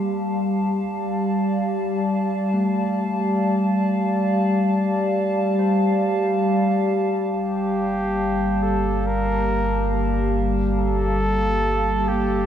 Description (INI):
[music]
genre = ambient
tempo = 69 BPM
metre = 4/4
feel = straight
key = G minor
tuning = A4 = 438 Hz
[part]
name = warbly tape-like pad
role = sustained chords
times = 0.0-12.5 s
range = G3 to A5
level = -20 LUFS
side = equal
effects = chorus, built-in reverb
[part]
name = bright tine electric piano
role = arpeggios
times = 0.0-12.5 s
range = G3 to C6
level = -32 LUFS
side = left 2 dB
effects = none
[part]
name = warm flugelhorn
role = melody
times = 7.3-12.5 s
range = G4 to Bb4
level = -25 LUFS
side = equal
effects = diffuse ambient delay
[part]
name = warm sub bass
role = bass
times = 7.3-12.5 s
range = G1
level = -26 LUFS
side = equal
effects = none
[sound]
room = wet huge ambient reverb, RT60 7.5 s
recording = cassette tape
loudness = -19 LUFS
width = side -9 dB against mid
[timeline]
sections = 0.0-7.3 A section; 7.3-12.5 B section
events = fade-out on tine electric piano 0.0-7.3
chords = 0.4 Dm/G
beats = | 0.37 1.24 2.11 2.98 | 3.85 4.72 5.59 6.46 | 7.33 8.20 9.06 9.93 | 10.80 11.67